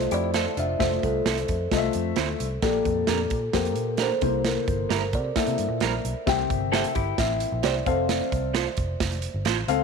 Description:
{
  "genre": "uptempo 1960s-style soul",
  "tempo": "132 BPM",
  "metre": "4/4",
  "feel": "straight",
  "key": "F major",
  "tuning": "A4 = 440 Hz",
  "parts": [
    { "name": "kalimba", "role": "melody", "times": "0.0-9.2 s", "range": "A4 to G5", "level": "-28 LUFS", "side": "right 2 dB", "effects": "slapback echo" },
    { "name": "dark grand piano", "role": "accompaniment", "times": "0.0-9.8 s", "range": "Bb2 to F5", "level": "-28 LUFS", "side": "left 13 dB", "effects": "none" },
    { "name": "vintage muted picked electric bass", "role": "bass", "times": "0.0-9.8 s", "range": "F1 to C3", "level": "-30 LUFS", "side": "equal", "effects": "none" },
    { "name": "natural country drum kit", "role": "drums", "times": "0.0-9.8 s", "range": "hi-hat, kick drum, snare drum", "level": "-29 LUFS", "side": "right 4 dB", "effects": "none" },
    { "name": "hollow-body jazz guitar", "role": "riff", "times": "0.1-1.2, 6.7-7.8 s", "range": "C4 to A4", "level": "-32 LUFS", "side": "left 14 dB", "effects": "none" },
    { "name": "electric guitar through a small old amp", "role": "stabs", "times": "0.3-9.6 s", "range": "G3 to C5", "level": "-30 LUFS", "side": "right 12 dB", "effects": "phaser" }
  ],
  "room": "light reverb, small room ambience",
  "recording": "1960s-style stereo with parts hard left and right",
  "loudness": "-22 LUFS",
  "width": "side -5 dB against mid",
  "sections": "0.0-6.3 A section; 6.3-9.8 B section",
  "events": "none",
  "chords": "0.0 Fmaj7; 2.6 Bb6; 4.2 C7; 6.3 C; 7.9 F"
}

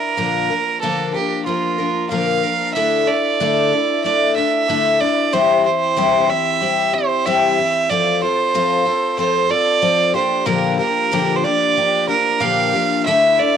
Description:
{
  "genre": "rock",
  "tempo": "93 BPM",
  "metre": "4/4",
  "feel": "straight",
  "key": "unclear",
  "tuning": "A4 = 440 Hz",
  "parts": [
    { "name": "bright fiddle", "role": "melody", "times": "0.0-13.6 s", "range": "F4 to F5", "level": "-17 LUFS", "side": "right 6 dB", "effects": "none" },
    { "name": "picked twelve-string acoustic guitar", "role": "accompaniment", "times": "0.0-13.6 s", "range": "Bb2 to Bb4", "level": "-19 LUFS", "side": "left 7 dB", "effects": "cassette tape" }
  ],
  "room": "moderate studio reverb, RT60 0.6 s",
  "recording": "home recording on cassette",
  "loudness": "-15 LUFS",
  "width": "side -8 dB against mid",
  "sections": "0.0-2.7 A section; 2.7-13.6 B section",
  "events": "none",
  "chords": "0.2 Bb; 2.7 Dsus2; 5.3 C/E; 7.9 F; 10.2 Bb6; 13.1 Dsus2"
}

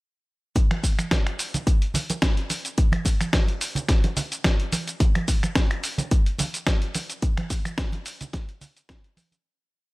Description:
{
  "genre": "nu-disco",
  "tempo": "108 BPM",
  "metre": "4/4",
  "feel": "swing 54% on 16ths",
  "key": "none",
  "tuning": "none",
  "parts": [
    { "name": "dusty soul sampler-style drum kit", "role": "drums", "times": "0.6-9.4 s", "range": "cabasa, finger snaps, hi-hat, snare drum", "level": "-27 LUFS", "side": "equal", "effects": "none" },
    { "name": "electronic kick drum", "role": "drums", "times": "0.6-9.0 s", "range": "none", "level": "-22 LUFS", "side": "equal", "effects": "none" },
    { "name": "congas", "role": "percussion", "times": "0.6-9.4 s", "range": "none", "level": "-29 LUFS", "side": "right 2 dB", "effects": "none" }
  ],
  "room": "digital ambience",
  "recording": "none",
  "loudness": "-21 LUFS",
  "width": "side -22 dB against mid",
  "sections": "0.6-9.4 drop",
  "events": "drop 0.6-9.4; fade-out 6.5-9.4",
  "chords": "none"
}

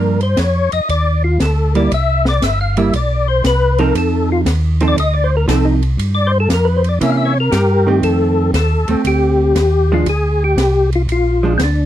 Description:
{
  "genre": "soul jazz organ trio",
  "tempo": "118 BPM",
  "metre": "4/4",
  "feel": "swing 67% on 8ths",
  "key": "F mixolydian",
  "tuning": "A4 = 440 Hz",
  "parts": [
    { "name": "percussive tonewheel organ", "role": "melody", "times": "0.0-11.9 s", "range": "C4 to F5", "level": "-17 LUFS", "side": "left 3 dB", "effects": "slow rotary speaker, chorus vibrato" },
    { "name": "vintage hollow-body jazz guitar", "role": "accompaniment", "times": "0.0-11.6 s", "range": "Eb3 to A4", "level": "-17 LUFS", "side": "right 5 dB", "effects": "none" },
    { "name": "mellow tonewheel organ", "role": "bass", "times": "0.0-11.9 s", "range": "G1 to C3", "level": "-15 LUFS", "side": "equal", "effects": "slow rotary speaker" },
    { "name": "open jazz drum kit", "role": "drums", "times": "0.2-11.8 s", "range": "hi-hat, kick drum, ride cymbal, snare drum", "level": "-25 LUFS", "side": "equal", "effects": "none" }
  ],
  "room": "little or no reverb",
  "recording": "dry, close 1970s-style studio recording",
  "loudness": "-12 LUFS",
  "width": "side -12 dB against mid",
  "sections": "0.0-8.0 A section; 8.0-11.9 B section",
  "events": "tonewheel organ solo 0.0-8.0",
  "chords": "0.0 Gm7; 1.9 C; 4.0 F7; 6.0 Fsus2; 7.0 C7b9; 8.0 F7; 10.1 Bb7"
}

